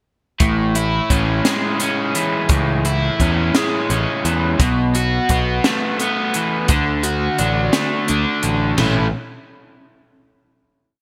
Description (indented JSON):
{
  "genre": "indie rock",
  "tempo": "57 BPM (dotted quarters)",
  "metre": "6/8",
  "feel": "straight",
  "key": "A major",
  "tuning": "A4 = 440 Hz",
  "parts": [
    { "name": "overdriven electric guitar", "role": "riff", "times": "0.4-9.1 s", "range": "A2 to F#4", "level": "-21 LUFS", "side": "equal", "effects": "lush chorus" },
    { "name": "growling picked electric bass", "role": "bass", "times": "0.4-9.1 s", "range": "A1 to E2", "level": "-23 LUFS", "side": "equal", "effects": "overdrive" },
    { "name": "compact cocktail drum kit", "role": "drums", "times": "0.4-8.9 s", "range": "crash cymbal, hi-hat, kick drum, snare drum, toms", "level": "-22 LUFS", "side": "equal", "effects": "gated reverb" }
  ],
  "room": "light reverb, small room ambience",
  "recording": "bright 1980s-style digital production",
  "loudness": "-18 LUFS",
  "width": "mono",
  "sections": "0.4-8.8 verse; 8.8-10.9 final chord",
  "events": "none",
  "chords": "0.4 Amaj7; 4.6 B7sus4; 6.7 D; 8.8 A",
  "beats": "| 0.41 1.45 | 2.50 3.55 | 4.59 5.64 | 6.69 7.74 | 8.78"
}